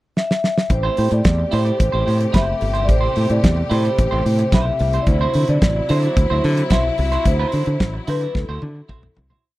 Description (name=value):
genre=disco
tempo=110 BPM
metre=4/4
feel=straight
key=A dorian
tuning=A4 = 439 Hz
part: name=vibraphone with soft mallets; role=melody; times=0.2-9.1 s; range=A4 to E5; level=-22 LUFS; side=equal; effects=none
part: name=damped 70s drum kit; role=drums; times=0.2-9.4 s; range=hi-hat, kick drum, snare drum, toms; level=-18 LUFS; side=equal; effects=none
part: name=clean electric guitar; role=accompaniment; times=0.7-9.4 s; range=E4 to D5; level=-28 LUFS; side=right 5 dB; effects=spring reverb
part: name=rich studio string section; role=sustained chords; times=0.7-9.4 s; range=C3 to G4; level=-27 LUFS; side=left 2 dB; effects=none
part: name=modern bright fingered electric bass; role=bass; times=0.7-9.4 s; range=F#1 to D3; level=-19 LUFS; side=equal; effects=none
room=little or no reverb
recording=dry, close 1970s-style studio recording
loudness=-16 LUFS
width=side -17 dB against mid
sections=0.0-0.7 pickup bar; 0.7-9.4 groove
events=drum fill 0.2-0.7, 8.3-9.4; fade-out 7.3-9.4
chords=0.0 N.C.; 0.7 Am7; 5.1 D9